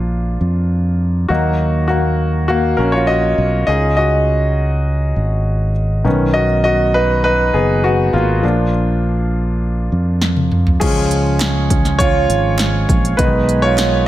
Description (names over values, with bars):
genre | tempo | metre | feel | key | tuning
piano-driven pop | 101 BPM | 4/4 | straight | unclear | A4 = 441 Hz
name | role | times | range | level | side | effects
clear concert grand piano | accompaniment | 0.0-14.1 s | D#3 to Eb5 | -17 LUFS | equal | none
fingered electric bass | bass | 0.0-14.1 s | F#1 to F2 | -16 LUFS | equal | none
deep house drum kit | drums | 10.2-13.9 s | crash cymbal, hi-hat, kick drum, snare drum, toms | -17 LUFS | equal | none
bright tonewheel organ | sustained chords | 10.8-14.1 s | Eb3 to Db4 | -24 LUFS | right 6 dB | wide subtle chorus
group handclap | percussion | 11.4-13.9 s | none | -30 LUFS | right 7 dB | none
room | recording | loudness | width
light reverb | none | -13 LUFS | side -14 dB against mid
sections
0.0-10.8 A section; 10.8-14.1 B section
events
grand piano solo 0.0-10.8, 10.8-14.1; drum fill 10.2-10.8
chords
0.0 Bb; 1.3 Ebm; 3.7 Dbadd9; 6.1 Badd9; 8.4 Bb; 10.8 Db; 13.2 Abm/Cb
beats
0.11 0.70 | 1.30 1.89 2.48 3.08 | 3.67 4.27 4.86 5.46 | 6.05 6.65 7.24 7.84 | 8.43 9.03 9.62 10.22 | 10.81 11.40 12.00 12.59 | 13.19 13.78